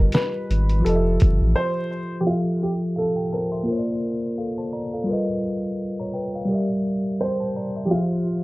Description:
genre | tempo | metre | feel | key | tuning
lo-fi hip hop | 85 BPM | 4/4 | swing 58% on 16ths | F major | A4 = 440 Hz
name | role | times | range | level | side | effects
mellow tine electric piano | accompaniment | 0.0-8.4 s | F3 to C6 | -24 LUFS | equal | medium stereo tremolo, cassette tape, plate reverb
saturated sub bass | bass | 0.0-1.5 s | F1 to A1 | -20 LUFS | equal | none
dark upright piano | melody | 0.1-8.4 s | F4 to C5 | -26 LUFS | right 1 dB | tape echo, plate reverb
lo-fi sampler-style drum kit | drums | 0.1-1.4 s | hi-hat, kick drum, snare drum | -18 LUFS | equal | none
room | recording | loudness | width
moderate small room reverb, RT60 0.5 s | dark, warm production, vinyl crackle, low-pass filter | -21 LUFS | side -21 dB against mid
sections
0.0-2.3 A section; 2.3-8.4 B section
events
break 1.6-2.3; filter sweep 2.3-8.4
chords
0.0 Gaug7; 0.8 Fmaj7; 3.7 Bbadd9; 5.1 G7alt; 6.5 C7/G; 7.9 F5

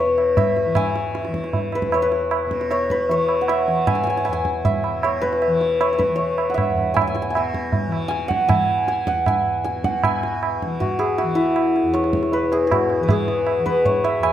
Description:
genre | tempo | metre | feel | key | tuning
indian classical, Hindustani | 156 BPM | 4/4 | straight | E raga bhupali | A4 = 440 Hz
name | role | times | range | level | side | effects
santur | melody | 0.0-14.3 s | E4 to G#5 | -20 LUFS | left 1 dB | none
tanpura | drone | 0.0-14.3 s | E2 to E3 | -29 LUFS | left 2 dB | none
tabla | percussion | 0.2-14.3 s | none | -24 LUFS | right 3 dB | none
room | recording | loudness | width
light reverb | close, detailed microphones | -18 LUFS | side -11 dB against mid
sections
0.0-10.0 A section; 10.0-14.3 B section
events
none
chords
none

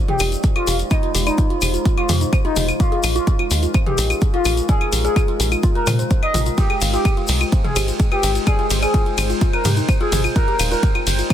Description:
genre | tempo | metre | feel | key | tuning
melodic techno | 127 BPM | 4/4 | straight | unclear | A4 = 441 Hz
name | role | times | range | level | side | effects
deep dark ambient pad | sustained chords | 0.0-11.3 s | Ab3 to G5 | -28 LUFS | equal | chorus, built-in reverb, sidechain pumping
woody wave-folded pluck | arpeggios | 0.0-11.3 s | Eb4 to F5 | -28 LUFS | right 1 dB | chorus, cassette tape, sidechain pumping, dub echo
expressive synth lead | melody | 0.1-10.9 s | Eb4 to Eb5 | -24 LUFS | equal | analog chorus, sidechain pumping, tape echo
dark detuned synth bell | second line | 0.1-10.9 s | Eb4 to Eb5 | -29 LUFS | left 3 dB | chorus, phaser, sidechain pumping, dub echo
house drum kit | drums | 0.1-11.3 s | claves, hi-hat, ride cymbal, toms | -24 LUFS | left 2 dB | none
tight sequencer bass | bass | 0.2-11.2 s | Eb1 to Bb2 | -20 LUFS | equal | sidechain pumping
tube shaker | percussion | 0.2-11.3 s | none | -31 LUFS | left 5 dB | none
electronic kick drum | drums | 0.4-11.3 s | none | -17 LUFS | equal | none
room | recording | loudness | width
little or no reverb | dense, heavily limited modern master | -16 LUFS | side -10 dB against mid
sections
0.0-11.3 A section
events
none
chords
0.0 Fm7; 2.8 Bb7sus4; 6.6 Abmaj7; 10.4 Eb6

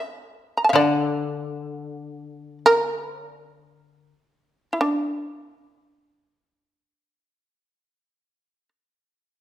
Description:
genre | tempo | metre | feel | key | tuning
japanese traditional, Japanese chamber music | free time | none | none | unclear | A4 = 440 Hz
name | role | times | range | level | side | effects
shamisen | melody | 0.0-8.7 s | D4 to Bb5 | -20 LUFS | right 1 dB | none
koto | accompaniment | 0.7-4.1 s | D3 | -25 LUFS | left 4 dB | none
room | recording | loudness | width
wet recital hall reverb, RT60 1.5 s | none | -20 LUFS | side -12 dB against mid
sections
0.0-9.3 A section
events
none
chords
none

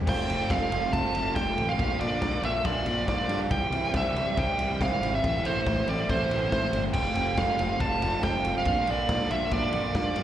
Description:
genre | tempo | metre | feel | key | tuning
indie rock | 140 BPM | 4/4 | straight | F major | A4 = 445 Hz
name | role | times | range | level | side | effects
electric guitar through a small old amp | riff | 0.0-10.2 s | A2 to F4 | -33 LUFS | left 5 dB | slapback echo
electric guitar through a small old amp | riff | 0.0-10.2 s | F2 to F4 | -33 LUFS | right 7 dB | lush chorus, slapback echo
growling fingered electric bass | bass | 0.0-10.2 s | F1 to G2 | -32 LUFS | equal | overdrive
dark smooth lead guitar | melody | 0.1-10.2 s | C5 to A5 | -28 LUFS | right 2 dB | overdrive, slapback echo, plate reverb
raw garage drum kit | drums | 0.1-10.2 s | crash cymbal, kick drum, ride cymbal, snare drum | -31 LUFS | equal | none
room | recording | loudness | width
light reverb | live gig heard through the venue's PA, recital hall reverb | -24 LUFS | side -11 dB against mid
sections
0.1-10.2 A section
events
none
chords
0.1 F; 1.8 Bb; 3.5 C; 5.2 Am; 7.0 F; 8.7 Bb

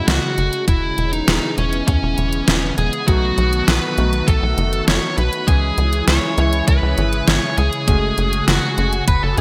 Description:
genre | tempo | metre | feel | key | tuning
synthwave | 100 BPM | 4/4 | straight | E major | A4 = 440 Hz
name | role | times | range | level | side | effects
dark smooth lead guitar | melody | 0.0-9.4 s | C#4 to C#5 | -24 LUFS | equal | overdrive, digital delay
phased analog pad | sustained chords | 0.0-9.4 s | C#3 to G#4 | -28 LUFS | equal | phaser, chorus, sidechain pumping
tight sequencer bass | bass | 0.0-9.4 s | E1 to F#2 | -22 LUFS | equal | none
pop drum kit | drums | 0.1-9.4 s | hi-hat, snare drum | -22 LUFS | equal | overdrive, gated reverb
electronic kick drum | drums | 0.7-9.2 s | none | -18 LUFS | equal | none
warm electric grand piano | stabs | 3.1-8.9 s | B2 to C#5 | -28 LUFS | equal | analog chorus
room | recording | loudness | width
light reverb, digital ambience | bright 1980s-style digital production | -18 LUFS | mono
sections
0.0-9.4 A section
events
none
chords
0.0 F#madd9; 0.7 E6; 3.1 B7; 5.5 C#m; 7.9 F#madd9

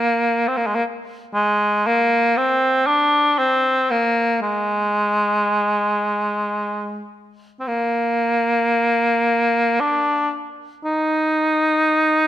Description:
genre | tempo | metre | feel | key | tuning
caucasian folk | 57 BPM | 3/4 | uneven beats, rubato | unclear | A4 = 440 Hz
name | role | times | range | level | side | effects
mellow cor anglais | solo | 0.0-12.3 s | Ab3 to Eb4 | -17 LUFS | equal | none
room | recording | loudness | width
moderate scoring stage reverb, RT60 1.7 s | none | -17 LUFS | side -12 dB against mid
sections
0.0-12.3 A section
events
none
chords
none

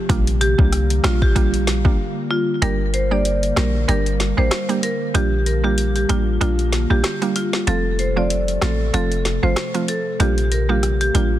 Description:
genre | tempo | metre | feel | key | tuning
dancehall | 95 BPM | 4/4 | swing 56% on 16ths | Bb major | A4 = 440 Hz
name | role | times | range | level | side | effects
glassy FM pad | sustained chords | 0.0-11.4 s | C3 to Bb3 | -27 LUFS | left 1 dB | ensemble chorus, built-in reverb, sidechain pumping
mallet-like synth pluck | accompaniment | 0.1-11.3 s | F3 to G4 | -24 LUFS | right 6 dB | chorus
clean 808-style bass | bass | 0.1-11.4 s | F1 to C2 | -20 LUFS | equal | none
afro-pop drum kit | drums | 0.1-11.3 s | hi-hat, kick drum, rim click, snare drum | -22 LUFS | equal | none
marimba with medium hard mallets | melody | 0.4-11.3 s | F4 to D5 | -23 LUFS | left 1 dB | digital delay
room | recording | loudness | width
little or no reverb | dense, heavily limited modern master | -16 LUFS | side -13 dB against mid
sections
0.0-2.6 A section; 2.6-11.4 B section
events
break 2.0-2.6; kick muted 2.6-11.4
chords
0.1 Bb6; 2.6 Gm; 5.1 Bb6; 7.7 F; 10.2 Bb6

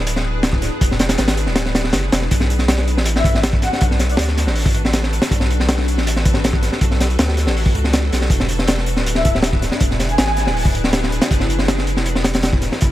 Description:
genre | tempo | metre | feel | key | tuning
drum and bass, jungle | 160 BPM | 4/4 | straight | B dorian | A4 = 440 Hz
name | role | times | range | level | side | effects
saturated sub bass | bass | 0.0-12.9 s | D1 to D2 | -20 LUFS | equal | none
crunchy breakbeat drum kit | drums | 0.1-12.9 s | hi-hat, kick drum, snare drum | -17 LUFS | equal | none
breathy flute-like synth lead | melody | 3.2-4.2, 9.2-10.6 s | D5 to G#5 | -25 LUFS | left 1 dB | ensemble chorus, dub echo
room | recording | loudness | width
little or no reverb | none | -15 LUFS | side -14 dB against mid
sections
0.0-12.9 A section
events
none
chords
0.0 E7; 2.3 Bm7; 8.3 E7; 11.3 F#7

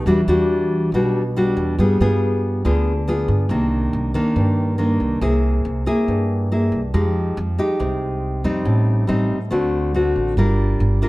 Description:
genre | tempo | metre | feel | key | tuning
bossa nova | 140 BPM | 4/4 | straight | C minor from 3.5 s | A4 = 437 Hz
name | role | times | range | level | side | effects
nylon-string guitar | accompaniment | 0.0-11.1 s | G2 to Bb4 | -19 LUFS | left 1 dB | none
upright bass | bass | 0.0-11.0 s | G1 to G2 | -21 LUFS | right 1 dB | none
room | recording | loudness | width
moderate large studio reverb, RT60 1.2 s | none | -17 LUFS | side -19 dB against mid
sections
0.0-3.5 A section; 3.5-11.1 A section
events
none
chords
0.1 Em9; 1.8 G7b9; 3.5 Cm9; 5.2 C7b13; 6.9 Fm9; 8.7 Am7b5; 9.5 D7; 10.4 Gm7

